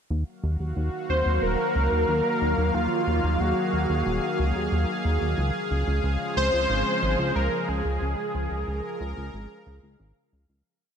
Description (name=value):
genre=synthwave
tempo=91 BPM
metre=4/4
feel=straight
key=Eb dorian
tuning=A4 = 440 Hz
part: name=lush unison pad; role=sustained chords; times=0.5-10.6 s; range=Db3 to F5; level=-29 LUFS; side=equal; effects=chorus
part: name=chorused synth bass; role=bass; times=0.1-10.6 s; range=Eb1 to Eb2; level=-26 LUFS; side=equal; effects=none
part: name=wide unison lead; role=melody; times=1.1-10.0 s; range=F4 to C5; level=-26 LUFS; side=equal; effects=vintage 12-bit sampler grit, ping-pong delay
room=moderate lush hall reverb, RT60 2.7 s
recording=bright 1980s-style digital production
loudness=-23 LUFS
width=side -7 dB against mid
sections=0.1-10.7 chorus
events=fade-out 7.1-10.7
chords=0.1 Ebmadd9; 5.4 Db